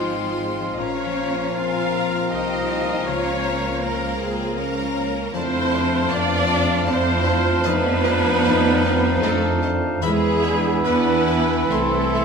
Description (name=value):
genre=classical, slow romantic movement for symphony orchestra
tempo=78 BPM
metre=3/4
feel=uneven beats, rubato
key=unclear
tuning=A4 = 440 Hz
part: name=clear studio violin section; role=melody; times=0.0-12.2 s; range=Ab3 to Bb4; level=-30 LUFS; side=left 5 dB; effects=none
part: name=clear oboe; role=second line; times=0.0-12.2 s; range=E5 to F5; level=-31 LUFS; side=equal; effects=none
part: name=rich studio violin section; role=second line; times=0.0-12.2 s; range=D5 to C6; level=-34 LUFS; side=left 4 dB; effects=none
part: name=silver concert flute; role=second line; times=0.0-12.2 s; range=A5 to C6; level=-31 LUFS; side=left 2 dB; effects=none
part: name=warm clarinet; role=second line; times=0.0-12.2 s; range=D4 to F4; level=-31 LUFS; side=left 1 dB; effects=none
part: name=clear studio viola section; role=accompaniment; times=0.0-12.2 s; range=F4 to F5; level=-25 LUFS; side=right 2 dB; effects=none
part: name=mellow bassoon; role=accompaniment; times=0.0-12.2 s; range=E3 to F3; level=-28 LUFS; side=right 2 dB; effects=none
part: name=bright trombone section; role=sustained chords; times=0.0-12.2 s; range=Eb3 to C4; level=-32 LUFS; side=right 5 dB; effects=none
part: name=mellow French horn section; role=sustained chords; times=0.0-12.2 s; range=A3 to F4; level=-28 LUFS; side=left 4 dB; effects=none
part: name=concert harp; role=arpeggios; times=0.0-12.2 s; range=Ab2 to F5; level=-31 LUFS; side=left 8 dB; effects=none
part: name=rich studio cello section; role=bass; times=0.0-12.2 s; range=F3 to F4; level=-27 LUFS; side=right 2 dB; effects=none
part: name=rich studio double bass section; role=bass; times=0.0-12.2 s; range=Ab1 to F2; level=-27 LUFS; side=right 2 dB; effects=none
room=moderate concert hall reverb, RT60 1.8 s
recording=minimal, uncompressed stereo recording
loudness=-18 LUFS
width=side -6 dB against mid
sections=0.0-12.2 A section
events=none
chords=0.0 Fm/Ab; 0.8 Bbm; 3.1 Bbm/Db; 5.3 Dm/F; 7.7 F7; 10.0 E; 11.7 Am/C